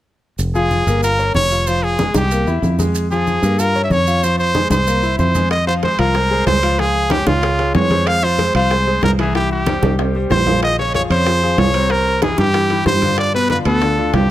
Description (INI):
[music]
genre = latin, salsa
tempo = 188 BPM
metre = 4/4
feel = straight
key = F harmonic minor, F minor from 5.5 s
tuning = A4 = 439 Hz
[part]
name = fingered electric bass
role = bass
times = 0.4-14.3 s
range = F1 to G2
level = -18 LUFS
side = equal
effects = none
[part]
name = congas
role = percussion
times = 0.4-14.3 s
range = none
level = -23 LUFS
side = equal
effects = none
[part]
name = maracas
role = percussion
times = 0.4-5.5 s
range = none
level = -31 LUFS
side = right 6 dB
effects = none
[part]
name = brilliant trumpet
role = melody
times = 0.6-14.3 s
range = F4 to F5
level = -18 LUFS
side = right 1 dB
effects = none
[part]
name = bright concert grand piano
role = accompaniment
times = 0.6-14.2 s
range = B2 to F5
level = -21 LUFS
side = left 2 dB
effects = none
[part]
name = bongos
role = percussion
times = 5.5-14.3 s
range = none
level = -27 LUFS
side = left 6 dB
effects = none
[part]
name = timbales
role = percussion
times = 5.5-14.3 s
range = none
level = -24 LUFS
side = right 6 dB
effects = none
[sound]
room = light reverb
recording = close, detailed microphones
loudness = -14 LUFS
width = side -13 dB against mid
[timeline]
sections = 0.4-5.5 A section; 5.5-14.3 B section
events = drum fill 9.8-10.6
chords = 0.4 Fm; 1.0 Gm7b5; 1.7 Fm; 2.3 C7; 3.0 Fm; 3.6 Bbm6; 4.2 Fm; 4.9 C7; 5.5 Fm; 6.8 Db; 8.1 Fm; 9.3 C; 10.6 Bbm7; 11.9 C7; 13.2 G7